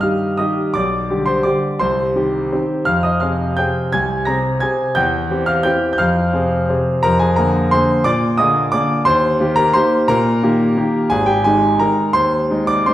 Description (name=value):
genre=classical, piano waltz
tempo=174 BPM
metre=3/4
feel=uneven beats, rubato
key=C minor, Eb major from 7.0 s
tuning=A4 = 440 Hz
part: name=clear concert grand piano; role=solo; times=0.0-12.9 s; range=Ab1 to Bb6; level=-14 LUFS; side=equal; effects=none
room=wet recital hall reverb, RT60 1.4 s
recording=heard from further back in the room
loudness=-14 LUFS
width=side -13 dB against mid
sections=0.0-12.9 A section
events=none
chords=0.0 Cm (rootless); 0.8 G/B; 1.8 Cm; 2.9 Fm; 5.0 C/E; 6.0 Fm; 7.0 Bb7/F; 9.1 Eb; 11.1 Ab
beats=0.03 0.39 | 0.75 1.10 1.46 | 1.81 2.15 2.52 | 2.88 3.22 3.58 | 3.94 4.27 4.62 | 4.96 5.31 5.66 | 6.00 6.34 6.69 | 7.04 7.38 7.72 | 8.05 8.38 8.72 | 9.06 9.40 9.75 | 10.09 10.43 10.77 | 11.11 11.46 11.81 | 12.15 12.50 12.87